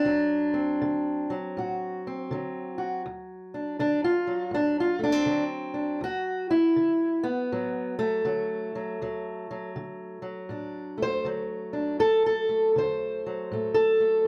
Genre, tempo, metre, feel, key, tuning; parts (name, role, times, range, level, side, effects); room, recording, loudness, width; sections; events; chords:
acoustic country blues, solo or duo; 80 BPM; 4/4; swing 64% on 8ths; D mixolydian; A4 = 441 Hz
fingerpicked steel-string acoustic guitar; solo; 0.0-14.3 s; D2 to C5; -27 LUFS; equal
light reverb; -27 LUFS; mono
0.0-3.0 A section; 3.0-14.3 A section
steel-string acoustic guitar solo 0.0-14.3
0.0 D7